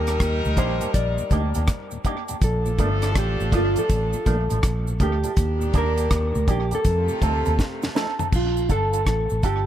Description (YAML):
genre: roots reggae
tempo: 81 BPM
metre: 4/4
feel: swing 65% on 16ths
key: Bb major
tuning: A4 = 440 Hz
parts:
  - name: mellow electric guitar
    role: melody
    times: 0.0-9.7 s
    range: F4 to D5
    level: -26 LUFS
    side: right 1 dB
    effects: tape echo
  - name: warm horn section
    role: second line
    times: 0.0-7.9 s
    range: C3 to Bb4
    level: -31 LUFS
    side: left 2 dB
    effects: tape echo
  - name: vintage muted fingered electric bass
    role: bass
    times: 0.0-9.7 s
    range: G1 to F2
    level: -24 LUFS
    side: equal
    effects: none
  - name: electric guitar with an envelope filter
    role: accompaniment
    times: 0.1-9.6 s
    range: F3 to A4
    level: -31 LUFS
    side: right 5 dB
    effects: tape echo
  - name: deep reggae drum kit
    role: drums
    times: 0.1-9.7 s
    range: crash cymbal, hi-hat, kick drum, rim click, snare drum, toms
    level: -23 LUFS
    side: equal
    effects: none
  - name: cabasa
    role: percussion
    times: 0.1-9.7 s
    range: none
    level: -37 LUFS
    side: right 2 dB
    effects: none
  - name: mellow tonewheel organ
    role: accompaniment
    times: 0.4-8.3 s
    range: Eb2 to Eb4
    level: -33 LUFS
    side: left 2 dB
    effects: overdrive, chorus vibrato, slow rotary speaker
room: light reverb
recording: none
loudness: -20 LUFS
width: side -11 dB against mid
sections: 0.0-8.3 A section; 8.3-9.7 B section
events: drum fill 7.6-8.3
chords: 0.0 Ebmaj7; 2.4 Bbmaj7; 5.4 Ebmaj7; 6.8 F7; 8.3 Bbmaj7